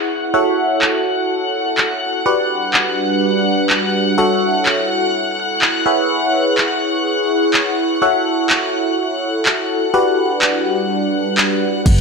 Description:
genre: piano house.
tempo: 125 BPM.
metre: 4/4.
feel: straight.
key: F# minor.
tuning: A4 = 440 Hz.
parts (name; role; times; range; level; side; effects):
warm studio violin section; sustained chords; 0.0-12.0 s; F#5 to F#6; -22 LUFS; left 3 dB; sidechain pumping, low-pass filter.
barking FM electric piano; riff; 0.0-11.8 s; F#4 to F#5; -18 LUFS; equal; phaser, sidechain pumping, tape echo.
warbly tape-like pad; texture; 0.0-12.0 s; G3 to C#6; -20 LUFS; right 1 dB; chorus, built-in reverb, sidechain pumping.
punchy analog drum machine; drums; 0.8-12.0 s; crash cymbal, handclaps, hi-hat, shaker; -17 LUFS; equal; low-pass filter on hats, low-pass filter on perc, low-pass filter on snare, low-pass filter on cymbals, low-pass filter on room.
solid FM bass; bass; 11.9-12.0 s; F#1; -15 LUFS; equal; sidechain pumping.
electronic kick drum; drums; 11.9-12.0 s; none; -11 LUFS; equal; none.
room: moderate plate reverb, RT60 1.4 s, digital ambience.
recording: none.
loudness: -14 LUFS.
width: side -4 dB against mid.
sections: 0.0-11.9 A section.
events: none.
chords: 0.3 F#m7; 2.3 Gmaj7; 4.2 F#m7; 5.9 E69; 8.0 F#m7; 9.9 Gmaj7.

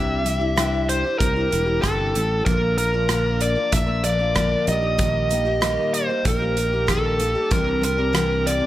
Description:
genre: folk rock and heartland rock.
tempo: 95 BPM.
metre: 4/4.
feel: straight.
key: unclear.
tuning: A4 = 440 Hz.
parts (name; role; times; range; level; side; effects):
bluesy overdriven lead guitar; melody; 0.0-8.7 s; A4 to E5; -22 LUFS; right 1 dB; distortion, tape echo.
picked twelve-string acoustic guitar; accompaniment; 0.0-8.7 s; Bb2 to Bb4; -26 LUFS; left 3 dB; none.
fingered electric bass; bass; 0.0-8.6 s; E1 to C2; -24 LUFS; equal; none.
natural country drum kit; drums; 0.3-8.6 s; hi-hat, kick drum, rim click; -25 LUFS; right 1 dB; none.
room: light reverb, studio ambience.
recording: none.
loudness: -18 LUFS.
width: side -14 dB against mid.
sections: 0.0-8.7 A section.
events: none.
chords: 0.0 Cadd9; 2.5 Bb; 4.7 Eb/Bb; 7.5 Cadd9.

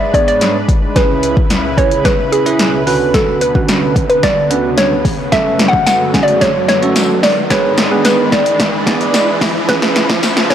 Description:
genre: dance-pop.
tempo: 110 BPM.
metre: 4/4.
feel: straight.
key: F# minor.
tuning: A4 = 438 Hz.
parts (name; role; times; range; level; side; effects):
hollow square pluck; melody; 0.0-10.5 s; G#4 to F#5; -15 LUFS; equal; chorus.
lush unison pad; sustained chords; 0.0-10.5 s; C#2 to B4; -20 LUFS; equal; chorus, sidechain pumping.
riser; sound effects; 0.8-10.5 s; none; -22 LUFS; equal; none.
bell-like tine electric piano; accompaniment; 0.1-10.5 s; D3 to D5; -18 LUFS; right 4 dB; phaser, sidechain pumping.
deep house drum kit; drums; 0.1-10.5 s; hi-hat, kick drum, snare drum; -15 LUFS; left 1 dB; overdrive.
tambourine; percussion; 5.9-10.4 s; none; -28 LUFS; left 7 dB; none.
room: light reverb.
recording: blown-out, overdriven recording, overdrive, high-pass filter.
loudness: -10 LUFS.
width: side -9 dB against mid.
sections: 0.0-10.5 A section.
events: build-up 0.0-10.5; drum fill 0.0-10.5; filter sweep 0.0-10.5; riser 0.8-10.5.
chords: 0.0 G#dim; 1.0 C#m7; 2.9 Bmadd9/D; 5.3 F#m; 7.5 G#dim; 9.7 C#m7.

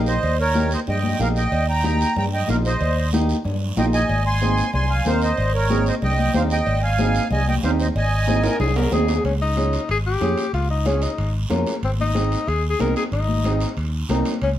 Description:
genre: latin, cumbia.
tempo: 186 BPM.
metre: 4/4.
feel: straight.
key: Ab major.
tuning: A4 = 439 Hz.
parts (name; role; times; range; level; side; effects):
flamenco guitar; accompaniment; 0.0-14.3 s; Bb3 to Bb4; -25 LUFS; right 3 dB; none.
fingered electric bass; bass; 0.0-14.6 s; Ab1 to G2; -22 LUFS; equal; none.
accordion; melody; 0.1-8.6 s; Bb4 to C6; -23 LUFS; right 2 dB; light tremolo tuning, plate reverb.
guiro; percussion; 0.1-14.6 s; none; -36 LUFS; right 6 dB; none.
cowbell and timbales; percussion; 0.2-14.6 s; none; -31 LUFS; right 2 dB; none.
congas; percussion; 0.6-14.6 s; none; -27 LUFS; left 4 dB; none.
breathy tenor saxophone; second line; 8.3-14.5 s; C4 to Bb4; -24 LUFS; left 4 dB; none.
room: moderate studio reverb, RT60 0.8 s.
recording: none.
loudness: -18 LUFS.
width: side -12 dB against mid.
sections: 0.0-9.2 A section; 9.2-14.6 B section.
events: drum fill 8.3-9.2; tenor saxophone solo 9.2-14.6.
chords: 0.0 Eb; 4.1 Ab; 9.2 Dbadd9; 11.8 Ab.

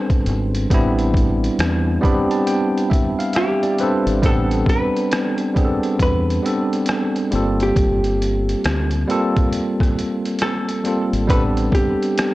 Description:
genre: lo-fi hip hop.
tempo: 68 BPM.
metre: 4/4.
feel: swing 62% on 16ths.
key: A minor.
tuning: A4 = 441 Hz.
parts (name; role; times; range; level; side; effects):
hollow-body jazz guitar; melody; 0.0-12.3 s; G4 to B4; -24 LUFS; equal; low-pass filter, analog delay.
bell-like tine electric piano; accompaniment; 0.0-12.3 s; G3 to B5; -19 LUFS; equal; medium stereo tremolo, cassette tape, low-pass filter.
trip hop sampler-style drum kit; drums; 0.1-12.3 s; hi-hat, kick drum, rim click; -21 LUFS; equal; vintage 12-bit sampler grit.
deep dub fingered electric bass; bass; 0.3-11.7 s; G1 to E2; -21 LUFS; equal; none.
room: light reverb.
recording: dry, gritty hardware recording, cassette tape.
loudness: -16 LUFS.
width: side -18 dB against mid.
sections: 0.0-4.2 A section; 4.2-12.3 B section.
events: none.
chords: 0.0 Am11; 7.3 Gm11; 11.3 Am11.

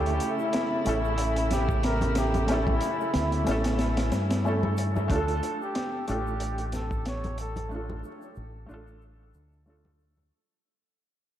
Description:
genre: trip hop.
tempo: 92 BPM.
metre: 4/4.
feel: swing 56% on 16ths.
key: D harmonic minor.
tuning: A4 = 440 Hz.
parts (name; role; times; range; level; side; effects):
trumpet with bucket mute; melody; 0.0-7.7 s; E4 to C#5; -32 LUFS; equal; tape echo.
felt-muted upright piano; accompaniment; 0.0-10.3 s; A3 to A4; -32 LUFS; equal; harmonic tremolo, low-pass filter, tape echo.
dark chamber string section; sustained chords; 0.0-5.1 s; C#3 to E4; -33 LUFS; equal; none.
deep dub fingered electric bass; bass; 0.0-10.3 s; A1 to G2; -29 LUFS; equal; tube saturation.
crunchy breakbeat drum kit; drums; 0.1-7.7 s; hi-hat, kick drum, snare drum; -32 LUFS; equal; none.
egg shaker and congas; percussion; 0.2-10.3 s; none; -38 LUFS; left 1 dB; none.
room: moderate lush hall reverb, RT60 2.6 s.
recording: dreamy mix soaked in reverb, vinyl crackle.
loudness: -25 LUFS.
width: side -11 dB against mid.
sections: 0.0-5.1 A section; 5.1-10.3 B section.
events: kick drops out 3.8-5.1; fade-out 5.1-10.3.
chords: 0.0 A; 5.1 Dm.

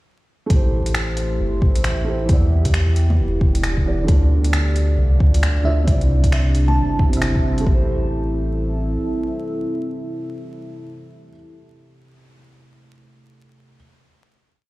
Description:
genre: future garage.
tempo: 134 BPM.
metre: 4/4.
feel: swing 62% on 16ths.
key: A minor.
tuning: A4 = 439 Hz.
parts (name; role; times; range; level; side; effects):
felt-muted upright piano; accompaniment; 0.5-13.8 s; C3 to E5; -26 LUFS; right 2 dB; sidechain pumping, tape echo.
dark analog pad; sustained chords; 1.0-11.6 s; G3 to F5; -27 LUFS; equal; chorus, phaser, sidechain pumping.
soft dub sub bass; bass; 0.5-9.0 s; E1 to E2; -18 LUFS; equal; sidechain pumping.
deep house drum kit; drums; 0.5-7.6 s; bongos, finger snaps, hi-hat; -27 LUFS; equal; studio reverb.
electronic kick drum; drums; 0.5-7.8 s; none; -17 LUFS; equal; studio reverb.
bell-like FM electric piano; melody; 5.7-7.0 s; E5 to A5; -29 LUFS; equal; chorus, tape echo.
room: light reverb, digital ambience.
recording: played on a big sound system in a bare room, large studio reverb, vinyl crackle.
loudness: -16 LUFS.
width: side -19 dB against mid.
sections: 0.5-7.7 chorus; 7.7-11.2 final chord.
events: none.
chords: 0.5 Am7; 2.3 Em7; 4.1 Dm; 5.9 Cadd9; 7.7 Am7.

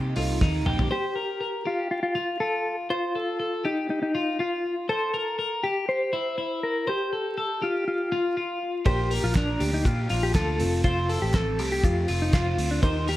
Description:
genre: jangly indie pop.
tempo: 121 BPM.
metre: 4/4.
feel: straight.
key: Bb major.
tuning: A4 = 440 Hz.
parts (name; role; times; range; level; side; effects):
overdriven electric guitar; accompaniment; 0.0-0.9, 8.8-13.2 s; F2 to Eb4; -35 LUFS; right 5 dB; phaser, plate reverb.
warm upright piano; accompaniment; 0.0-0.9, 8.8-13.2 s; A3 to Bb4; -38 LUFS; right 3 dB; plate reverb.
twelve-string electric guitar; arpeggios; 0.0-13.2 s; Eb4 to C5; -29 LUFS; left 2 dB; plate reverb.
vintage muted picked electric bass; bass; 0.0-0.9, 8.9-13.1 s; F1 to C3; -27 LUFS; equal; none.
cloth-damped thuddy drum kit; drums; 0.2-0.9, 8.9-13.2 s; hi-hat, kick drum, ride cymbal, snare drum, toms; -26 LUFS; equal; none.
mellow electric guitar; melody; 0.9-13.2 s; D4 to C5; -28 LUFS; left 1 dB; tremolo, plate reverb.
group handclap; percussion; 9.3-12.4 s; none; -41 LUFS; right 4 dB; none.
room: light reverb.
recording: vinyl crackle.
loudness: -23 LUFS.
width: side -15 dB against mid.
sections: 0.9-13.2 A section.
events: drum fill 0.4-0.9.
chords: 0.0 Cm7; 0.9 Bb5; 2.7 F; 4.9 C7; 6.9 F; 8.9 Bb; 10.6 F.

